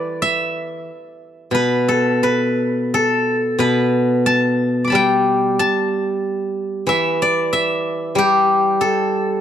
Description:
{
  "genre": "chinese traditional, Chinese solo plucked strings",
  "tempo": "91 BPM",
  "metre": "4/4",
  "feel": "rubato",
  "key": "E yu mode",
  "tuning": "A4 = 440 Hz",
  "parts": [
    { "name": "steel-string zither", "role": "solo", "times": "0.0-9.4 s", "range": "B2 to D6", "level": "-16 LUFS", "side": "equal", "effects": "none" }
  ],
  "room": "moderate spring reverb, RT60 2.3 s",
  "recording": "none",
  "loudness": "-15 LUFS",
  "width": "side -10 dB against mid",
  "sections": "0.0-9.4 A section",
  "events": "none",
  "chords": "none",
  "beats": "| 0.22 0.88 1.55 2.23 | 2.93 3.60 4.27 4.94 | 5.59 6.24 6.88 7.52 | 8.17 8.82"
}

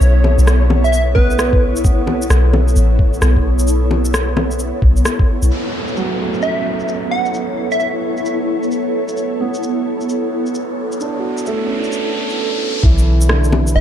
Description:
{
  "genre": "future garage",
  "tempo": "131 BPM",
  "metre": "4/4",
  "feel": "swing 63% on 16ths",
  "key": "B minor",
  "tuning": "A4 = 440 Hz",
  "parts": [
    { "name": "plucky unison lead", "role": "melody", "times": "0.0-1.6, 6.4-7.9, 13.8 s", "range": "B4 to F#5", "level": "-22 LUFS", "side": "right 1 dB", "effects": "phaser, analog delay" },
    { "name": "felt-muted upright piano", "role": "accompaniment", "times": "0.0-13.8 s", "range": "D3 to F#4", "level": "-24 LUFS", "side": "right 4 dB", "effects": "vintage 12-bit sampler grit, sidechain pumping, analog delay" },
    { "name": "ethereal airy pad", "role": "sustained chords", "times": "0.0-12.4 s", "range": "B3 to C#5", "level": "-21 LUFS", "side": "right 1 dB", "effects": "ensemble chorus, built-in reverb, phaser, sidechain pumping" },
    { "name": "soft 808-style bass", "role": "bass", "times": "0.0-5.5, 12.8-13.8 s", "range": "F#1 to B1", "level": "-14 LUFS", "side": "equal", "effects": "sidechain pumping" },
    { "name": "electronic shaker, bongos and rim click", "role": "drums", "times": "0.0-13.7 s", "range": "none", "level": "-21 LUFS", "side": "left 2 dB", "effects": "overdrive, low-pass filter on perc, low-pass filter on snare, low-pass filter on room" },
    { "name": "flickering grainy texture", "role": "texture", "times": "0.0-5.5, 13.6-13.8 s", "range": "B4 to C#5", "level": "-31 LUFS", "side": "left 3 dB", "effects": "built-in reverb" },
    { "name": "electronic kick drum", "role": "drums", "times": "1.2-5.3, 12.8-13.0 s", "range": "none", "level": "-14 LUFS", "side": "equal", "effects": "overdrive" },
    { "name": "downlifter and riser", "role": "sound effects", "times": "5.5-12.8 s", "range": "none", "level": "-27 LUFS", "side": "equal", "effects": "none" }
  ],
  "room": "light reverb, digital ambience",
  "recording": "none",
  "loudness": "-14 LUFS",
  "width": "side -10 dB against mid",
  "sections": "0.0-5.5 A section; 5.5-12.8 B section",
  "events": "riser 10.3-12.8",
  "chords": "0.0 A; 5.5 Bm7; 12.8 Bm",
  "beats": "| 0.01 0.47 0.93 1.39 | 1.84 2.30 2.76 3.22 | 3.68 4.13 4.59 5.05 | 5.51 5.97 6.42 6.88 | 7.34 7.80 8.26 8.72 | 9.17 9.63 10.09 10.55 | 11.01 11.46 11.92 12.38 | 12.84 13.30 13.75"
}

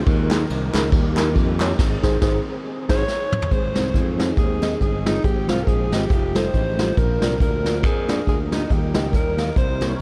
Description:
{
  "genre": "uptempo gospel",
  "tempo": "139 BPM",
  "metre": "4/4",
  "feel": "swing 57% on 8ths",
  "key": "Ab major",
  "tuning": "A4 = 441 Hz",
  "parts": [
    { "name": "tonewheel organ", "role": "sustained chords", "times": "0.0-10.0 s", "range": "Eb3 to Db5", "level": "-32 LUFS", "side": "equal", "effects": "none" },
    { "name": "modern bright fingered electric bass", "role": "bass", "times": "0.0-9.9 s", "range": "F1 to F2", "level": "-27 LUFS", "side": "equal", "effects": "none" },
    { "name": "mellow tine electric piano", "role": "accompaniment", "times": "0.1-10.0 s", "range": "Ab2 to F5", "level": "-28 LUFS", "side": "equal", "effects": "none" },
    { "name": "vintage brush drum kit", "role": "drums", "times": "0.1-9.9 s", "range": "crash cymbal, hi-hat, kick drum, ride cymbal, snare drum, toms", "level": "-24 LUFS", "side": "equal", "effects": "none" },
    { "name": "group handclap", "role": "percussion", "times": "0.3-1.7 s", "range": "none", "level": "-35 LUFS", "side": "equal", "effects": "none" },
    { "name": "growling alto saxophone", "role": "melody", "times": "2.9-10.0 s", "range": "Eb4 to Db5", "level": "-28 LUFS", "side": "equal", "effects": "analog delay" },
    { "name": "warm French horn section", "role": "sustained chords", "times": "3.5-10.0 s", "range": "Eb3 to G4", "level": "-39 LUFS", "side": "equal", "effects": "none" }
  ],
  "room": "moderate huge ambient reverb, RT60 8.0 s",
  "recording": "dreamy mix soaked in reverb",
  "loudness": "-20 LUFS",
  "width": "mono",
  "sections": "0.0-3.5 A section; 3.5-10.0 B section",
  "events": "band accent 1.8-3.5; drum fill 3.1-3.5",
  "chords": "0.1 Ebsus4; 0.9 Eb; 1.8 Ab; 5.2 Fm/Ab; 6.1 F9; 7.0 Bb; 8.7 Eb",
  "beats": "| 0.07 0.50 0.93 1.36 | 1.79 2.22 2.65 3.08 | 3.51 3.94 4.38 4.81 | 5.24 5.68 6.11 6.54 | 6.97 7.41 7.84 8.27 | 8.70 9.13 9.57 10.00"
}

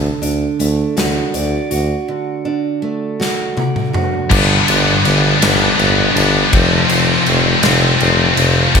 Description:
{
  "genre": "quiet-loud alternative rock",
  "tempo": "54 BPM (dotted quarters)",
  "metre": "6/8",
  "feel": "straight",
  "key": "G mixolydian from 4.3 s",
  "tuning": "A4 = 439 Hz",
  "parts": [
    { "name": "picked steel-string acoustic guitar", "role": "arpeggios", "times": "0.0-4.3 s", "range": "D3 to D5", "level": "-20 LUFS", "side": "right 4 dB", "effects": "tape echo" },
    { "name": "warm tuba", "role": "bass", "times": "0.0-8.8 s", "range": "F1 to D2", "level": "-18 LUFS", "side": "equal", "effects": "none" },
    { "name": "big rock drum kit", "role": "drums", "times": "0.2-8.8 s", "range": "crash cymbal, hi-hat, kick drum, ride cymbal, snare drum, toms", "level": "-18 LUFS", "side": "equal", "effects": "none" },
    { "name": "tonewheel organ", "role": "sustained chords", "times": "4.3-8.8 s", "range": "D4 to A5", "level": "-25 LUFS", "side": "right 1 dB", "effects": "overdrive, chorus vibrato, slow rotary speaker" },
    { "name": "scooped high-gain guitar", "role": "riff", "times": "4.3-8.8 s", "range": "F2 to D4", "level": "-15 LUFS", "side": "left 13 dB", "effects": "distortion" },
    { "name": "scooped high-gain guitar", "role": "riff", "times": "4.3-8.8 s", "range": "F2 to D4", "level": "-18 LUFS", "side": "right 14 dB", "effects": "distortion" },
    { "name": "sludgy distorted guitar", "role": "riff", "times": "4.3-8.8 s", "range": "F2 to G3", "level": "-18 LUFS", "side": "equal", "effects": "overdrive" }
  ],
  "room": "light reverb, small room ambience",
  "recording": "none",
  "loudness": "-12 LUFS",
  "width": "side -6 dB against mid",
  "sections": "0.0-4.3 A section; 4.3-8.8 B section",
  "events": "drum fill 3.2-4.3",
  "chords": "0.0 D; 4.3 G; 6.5 F",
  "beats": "0.97 | 2.08 3.20 | 4.31 5.42 | 6.54 7.64 | 8.75"
}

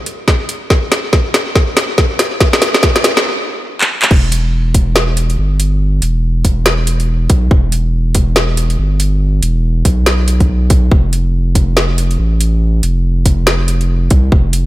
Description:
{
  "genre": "deep dubstep",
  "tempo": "141 BPM",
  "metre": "4/4",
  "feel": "swing 60% on 16ths, half-time",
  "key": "E phrygian",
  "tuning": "A4 = 440 Hz",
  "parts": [
    { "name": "garage drum kit", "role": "drums", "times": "0.1-14.6 s", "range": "crash cymbal, handclaps, hi-hat, snare drum", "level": "-14 LUFS", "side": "equal", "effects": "overdrive, small room ambience" },
    { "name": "electronic kick drum", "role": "drums", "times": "0.3-14.4 s", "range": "none", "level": "-12 LUFS", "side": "equal", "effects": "small room ambience" },
    { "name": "saturated sub bass", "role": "bass", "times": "4.1-14.7 s", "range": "E1 to C2", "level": "-13 LUFS", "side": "equal", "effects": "none" }
  ],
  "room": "light reverb",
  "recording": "none",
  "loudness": "-11 LUFS",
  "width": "side -17 dB against mid",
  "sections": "0.0-4.1 A section; 4.1-14.7 B section",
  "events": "build-up 0.0-4.1; drum fill 0.0-3.3, 3.8-4.1; stop 3.3-4.1; drop 4.1-14.7",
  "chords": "none",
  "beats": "0.28 | 0.70 1.13 1.55 1.98 | 2.40 2.83 3.25 3.68 | 4.11 4.53 4.96 5.38 | 5.81 6.23 6.66 7.08 | 7.51 7.94 8.36 8.79 | 9.21 9.64 10.06 10.49 | 10.91 11.34 11.77 12.19 | 12.62 13.04 13.47 13.89 | 14.32"
}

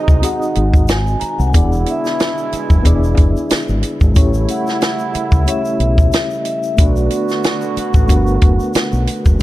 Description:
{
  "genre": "lush 1970s-style soul",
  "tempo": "92 BPM",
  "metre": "4/4",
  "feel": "swing 54% on 16ths",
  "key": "B minor",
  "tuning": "A4 = 439 Hz",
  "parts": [
    { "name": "vibraphone with medium mallets", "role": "melody", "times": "0.0-9.0 s", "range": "D5 to A#5", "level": "-23 LUFS", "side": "moving between left 4 dB and right 2 dB", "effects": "auto-pan" },
    { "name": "mellow reed electric piano", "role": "accompaniment", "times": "0.0-9.4 s", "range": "G#3 to D#5", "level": "-22 LUFS", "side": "left 2 dB", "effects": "fast tremolo" },
    { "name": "tonewheel organ", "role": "sustained chords", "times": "0.0-9.4 s", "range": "C#3 to F#4", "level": "-29 LUFS", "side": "equal", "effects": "overdrive, fast rotary speaker" },
    { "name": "clear trombone section", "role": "stabs", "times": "0.0-9.0 s", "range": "B2 to F#4", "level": "-24 LUFS", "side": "right 7 dB", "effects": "none" },
    { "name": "growling fingered electric bass", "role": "bass", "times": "0.1-9.4 s", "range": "E1 to C#2", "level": "-16 LUFS", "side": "equal", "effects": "overdrive" },
    { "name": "compact cocktail drum kit", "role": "drums", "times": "0.1-9.4 s", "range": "hi-hat, kick drum, snare drum", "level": "-14 LUFS", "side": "equal", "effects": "none" },
    { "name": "egg shaker", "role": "percussion", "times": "0.1-9.4 s", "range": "none", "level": "-39 LUFS", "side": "left 7 dB", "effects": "none" }
  ],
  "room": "studio ambience",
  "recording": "dark, warm production",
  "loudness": "-12 LUFS",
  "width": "side -16 dB against mid",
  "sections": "0.0-9.4 A section",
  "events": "none",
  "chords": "0.0 G#7; 1.5 E7; 4.2 A7; 6.8 Bm7",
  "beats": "0.24 0.89 | 1.55 2.20 2.86 3.51 | 4.17 4.82 5.47 6.13 | 6.79 7.44 8.09 8.75 | 9.40"
}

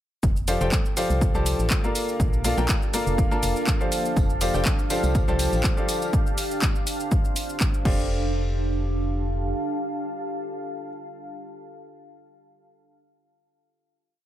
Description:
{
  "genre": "piano house",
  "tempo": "122 BPM",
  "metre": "4/4",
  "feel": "swing 53% on 16ths",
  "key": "F major",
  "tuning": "A4 = 440 Hz",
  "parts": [
    { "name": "organ-like FM bass", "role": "bass", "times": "0.2-9.5 s", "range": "F1 to C2", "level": "-26 LUFS", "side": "equal", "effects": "sidechain pumping" },
    { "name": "electronic kick drum", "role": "drums", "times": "0.2-8.0 s", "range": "none", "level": "-23 LUFS", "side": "equal", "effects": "none" },
    { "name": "house drum kit", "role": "drums", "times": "0.2-8.0 s", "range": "cabasa, crash cymbal, handclaps, hi-hat", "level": "-30 LUFS", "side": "equal", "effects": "none" },
    { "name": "deep dark ambient pad", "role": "texture", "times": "1.2-11.3 s", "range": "Bb3 to A5", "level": "-31 LUFS", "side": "right 1 dB", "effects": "chorus, built-in reverb, sidechain pumping" },
    { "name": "clear concert grand piano", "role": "riff", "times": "0.5-10.9 s", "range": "F3 to A5", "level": "-27 LUFS", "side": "left 1 dB", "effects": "sidechain pumping, tape echo" },
    { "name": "tambourine", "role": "percussion", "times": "4.2-6.1 s", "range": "none", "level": "-38 LUFS", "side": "left 2 dB", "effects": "none" }
  ],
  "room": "little or no reverb",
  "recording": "none",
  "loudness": "-21 LUFS",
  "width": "side -12 dB against mid",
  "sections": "0.2-8.1 drop; 8.1-12.0 final chord",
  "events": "drop 0.2-8.1",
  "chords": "0.2 F69; 6.1 Dm7; 7.9 F69",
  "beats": "| 0.23 0.72 1.22 1.71 | 2.20 2.69 3.18 3.67 | 4.17 4.66 5.15 5.64 | 6.13 6.62 7.12 7.61 | 8.10 8.59 9.08 9.58 | 10.07 10.56 11.05"
}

